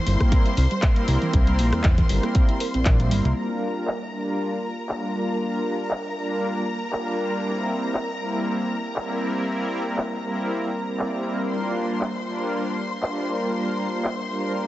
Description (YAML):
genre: nu-disco, nu disco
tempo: 118 BPM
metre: 4/4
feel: swing 54% on 16ths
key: G dorian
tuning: A4 = 440 Hz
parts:
  - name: warm symphonic string section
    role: sustained chords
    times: 0.0-14.7 s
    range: Bb4 to C6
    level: -32 LUFS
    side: left 2 dB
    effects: sidechain pumping
  - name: warm analog pad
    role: accompaniment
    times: 0.1-14.7 s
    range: G3 to D5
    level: -26 LUFS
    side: equal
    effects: chorus, tremolo, tape echo
  - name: soft round pluck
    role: arpeggios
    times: 0.1-3.3 s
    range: E3 to Bb4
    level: -29 LUFS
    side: right 2 dB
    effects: analog chorus, sidechain pumping, tape echo
  - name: fat analog bass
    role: bass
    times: 0.1-3.3 s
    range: G1 to E2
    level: -21 LUFS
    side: equal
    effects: tube saturation, sidechain pumping
  - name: house drum kit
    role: drums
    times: 0.1-14.7 s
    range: crash cymbal, handclaps, hi-hat, rim click, shaker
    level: -30 LUFS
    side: equal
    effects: low-pass filter on hats, low-pass filter on snare, low-pass filter on cymbals, low-pass filter on perc
  - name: electronic kick drum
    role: drums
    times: 0.2-3.0 s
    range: none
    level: -19 LUFS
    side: equal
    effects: none
room: light reverb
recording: heavily compressed radio sound, nothing above 7.9 kHz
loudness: -22 LUFS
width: side -15 dB against mid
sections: 0.0-3.4 A section; 3.4-14.7 B section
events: none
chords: 0.0 C7; 3.4 Gm7; 7.4 C7; 11.5 Gm7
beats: 0.32 0.83 | 1.33 1.84 2.35 2.86 | 3.37 3.88 4.39 4.89 | 5.40 5.91 6.42 6.93 | 7.44 7.95 8.45 8.96 | 9.47 9.98 10.49 11.00 | 11.51 12.01 12.52 13.03 | 13.54 14.05 14.56